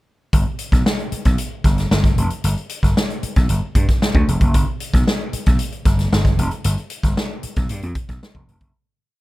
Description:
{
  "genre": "funk",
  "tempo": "114 BPM",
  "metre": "4/4",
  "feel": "straight",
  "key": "G mixolydian",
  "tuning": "A4 = 440 Hz",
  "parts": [
    { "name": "vintage slap bass", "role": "bass", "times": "0.3-8.7 s", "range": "E1 to G2", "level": "-19 LUFS", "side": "equal", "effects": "none" },
    { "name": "swinging big-band drum kit", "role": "drums", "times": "0.3-8.7 s", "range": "hi-hat, kick drum, snare drum", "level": "-18 LUFS", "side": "equal", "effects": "none" }
  ],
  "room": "little or no reverb",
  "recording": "none",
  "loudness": "-16 LUFS",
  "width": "side -18 dB against mid",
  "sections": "0.3-8.7 breakdown",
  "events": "fade-out 6.6-8.7",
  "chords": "none"
}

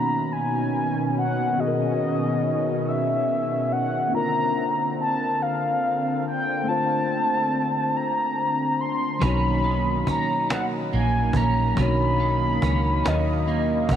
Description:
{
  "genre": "slow six-eight R&B",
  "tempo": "47 BPM (dotted quarters)",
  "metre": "6/8",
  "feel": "straight",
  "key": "B major",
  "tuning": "A4 = 440 Hz",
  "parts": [
    { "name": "mellow horn-like synth lead", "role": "melody", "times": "0.0-14.0 s", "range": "D#5 to B#5", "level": "-24 LUFS", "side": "left 1 dB", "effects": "chorus, analog delay" },
    { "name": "mellow tine electric piano", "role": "accompaniment", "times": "0.0-14.0 s", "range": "D#3 to C#5", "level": "-29 LUFS", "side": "left 3 dB", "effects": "slow stereo tremolo" },
    { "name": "warm analog pad", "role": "sustained chords", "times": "0.0-14.0 s", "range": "B2 to C#4", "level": "-28 LUFS", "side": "right 1 dB", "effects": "chorus" },
    { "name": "clean electric guitar", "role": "second line", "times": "9.2-14.0 s", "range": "B2 to C#4", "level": "-31 LUFS", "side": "right 6 dB", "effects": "ensemble chorus, analog delay" },
    { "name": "vintage muted fingered electric bass", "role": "bass", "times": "9.2-14.0 s", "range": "A#1 to D#2", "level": "-24 LUFS", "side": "equal", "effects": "none" },
    { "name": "cajon", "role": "drums", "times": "9.2-14.0 s", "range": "none", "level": "-30 LUFS", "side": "right 1 dB", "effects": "none" }
  ],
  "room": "moderate huge ambient reverb, RT60 6.2 s",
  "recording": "dreamy mix soaked in reverb",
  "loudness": "-21 LUFS",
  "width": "side -9 dB against mid",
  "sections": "0.0-14.0 A section",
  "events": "none",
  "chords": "0.0 Bmaj9; 4.1 A#maj9; 9.2 Bmaj9"
}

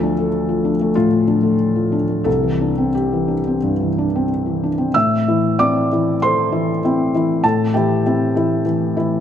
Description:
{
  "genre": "neoclassical minimalist piano",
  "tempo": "87-100 BPM",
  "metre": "4/4",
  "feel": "rubato",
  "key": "unclear",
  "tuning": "A4 = 441 Hz",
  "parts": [
    { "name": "felt-muted upright piano", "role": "solo", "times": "0.0-9.2 s", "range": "C2 to E6", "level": "-15 LUFS", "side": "left 1 dB", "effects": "none" }
  ],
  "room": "moderate concert hall reverb, RT60 2.2 s",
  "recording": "none",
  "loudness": "-15 LUFS",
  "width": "side -9 dB against mid",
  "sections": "0.0-4.9 A section; 4.9-9.2 B section",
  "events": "none",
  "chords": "0.0 Dm; 2.3 Cadd9; 4.9 Am7"
}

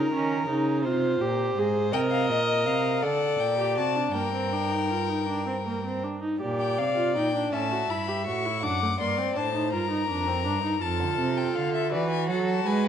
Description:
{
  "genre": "classical, baroque-style fugue for string quartet",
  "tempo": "55 BPM (dotted quarters)",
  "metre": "6/8",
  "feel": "straight",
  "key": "G minor",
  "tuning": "A4 = 440 Hz",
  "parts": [
    { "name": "rich violin", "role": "second line", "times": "0.0-12.9 s", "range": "A4 to F#5", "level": "-30 LUFS", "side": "left 4 dB", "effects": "none" },
    { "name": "warm viola", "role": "accompaniment", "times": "0.0-12.9 s", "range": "A3 to Bb4", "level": "-28 LUFS", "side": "right 2 dB", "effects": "none" },
    { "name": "warm cello", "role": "bass", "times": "0.0-12.9 s", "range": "F2 to G#3", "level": "-30 LUFS", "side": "right 4 dB", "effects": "none" },
    { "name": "rich violin", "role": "melody", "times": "1.9-12.9 s", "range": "D5 to D6", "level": "-30 LUFS", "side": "left 8 dB", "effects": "none" }
  ],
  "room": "moderate recital hall reverb, RT60 1.7 s",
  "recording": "worn, warbling old tape, cassette tape, warbly pitch drift",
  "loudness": "-24 LUFS",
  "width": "side -8 dB against mid",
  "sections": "0.0-6.4 A section; 6.4-12.9 B section",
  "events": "none",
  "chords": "0.0 Eb5/Db; 0.8 Ab; 1.9 Cm; 3.0 D7; 4.1 Gm; 6.4 Gm/Bb; 7.5 A7; 8.6 D7/F#; 9.7 Gm; 10.8 Dm/F; 11.9 E"
}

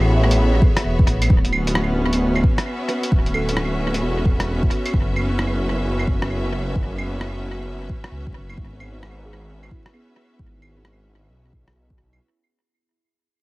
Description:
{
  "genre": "future garage",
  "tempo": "132 BPM",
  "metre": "4/4",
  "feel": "swing 64% on 16ths",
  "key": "unclear",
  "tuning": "A4 = 440 Hz",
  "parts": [
    { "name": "muted felt-like synth keys", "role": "accompaniment", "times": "0.0-12.4 s", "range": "B3 to E5", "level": "-32 LUFS", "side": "right 2 dB", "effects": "chorus, sidechain pumping, dub echo" },
    { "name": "rich studio string section", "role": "sustained chords", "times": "0.0-12.2 s", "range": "B3 to E5", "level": "-26 LUFS", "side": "equal", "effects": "sidechain pumping" },
    { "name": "swelling detuned saw bass", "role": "bass", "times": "0.0-12.2 s", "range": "D1 to C#2", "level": "-22 LUFS", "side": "equal", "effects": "sidechain pumping" },
    { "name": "lo-fi sampler-style drum kit", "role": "drums", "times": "0.3-12.2 s", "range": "claves, hi-hat, rim click", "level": "-26 LUFS", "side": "right 1 dB", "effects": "tape echo" },
    { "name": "electronic kick drum", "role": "drums", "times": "0.6-12.0 s", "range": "none", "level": "-18 LUFS", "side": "equal", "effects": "none" }
  ],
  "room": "little or no reverb",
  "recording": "echo-heavy mix, vinyl crackle",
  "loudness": "-18 LUFS",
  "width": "side -21 dB against mid",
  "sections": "0.0-12.2 A section",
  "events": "fade-out 0.0-12.2",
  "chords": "0.0 Amaj9; 1.3 Dmaj9; 4.9 F#7(no3); 8.6 C#m7/G#"
}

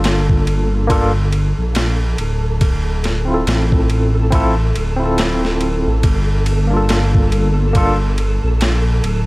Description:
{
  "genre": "trip hop",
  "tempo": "70 BPM",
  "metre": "4/4",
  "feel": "swing 59% on 16ths",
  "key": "G dorian",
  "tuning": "A4 = 440 Hz",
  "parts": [
    { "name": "barky tine electric piano", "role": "accompaniment", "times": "0.0-8.0 s", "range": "Bb3 to A4", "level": "-20 LUFS", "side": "equal", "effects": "tremolo, low-pass filter, tape echo" },
    { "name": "dark detuned saw bass", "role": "bass", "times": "0.0-9.3 s", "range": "D1 to Bb1", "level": "-16 LUFS", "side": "equal", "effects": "none" },
    { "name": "boom bap sampler-style drum kit", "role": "drums", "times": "0.0-9.3 s", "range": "kick drum, ride cymbal, snare drum", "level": "-20 LUFS", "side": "equal", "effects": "small room ambience" },
    { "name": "flickering grainy texture", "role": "texture", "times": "0.1-9.3 s", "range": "A4", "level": "-28 LUFS", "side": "right 1 dB", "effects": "built-in reverb" }
  ],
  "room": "little or no reverb",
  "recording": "vinyl crackle",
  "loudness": "-14 LUFS",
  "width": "side -22 dB against mid",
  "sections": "0.0-9.3 A section",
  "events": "filter sweep on tine electric piano 0.0-9.3",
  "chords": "0.0 Gm7; 2.6 Dm7; 6.0 Gm7"
}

